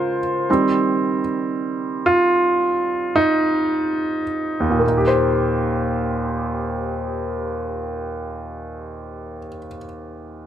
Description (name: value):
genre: pop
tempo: 53-58 BPM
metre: 4/4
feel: straight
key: Eb major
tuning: A4 = 442 Hz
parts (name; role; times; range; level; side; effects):
- bright concert grand piano; accompaniment; 0.0-10.5 s; Eb2 to C5; -19 LUFS; right 1 dB; none
room: light reverb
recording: none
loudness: -18 LUFS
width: side -10 dB against mid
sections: 0.0-4.8 A section; 4.8-9.4 B section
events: slowing down 0.0-4.8; grand piano solo 0.0-4.8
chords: 0.5 Eb6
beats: | 0.48 1.54 2.61 3.71 | 4.83 5.97 7.12 8.26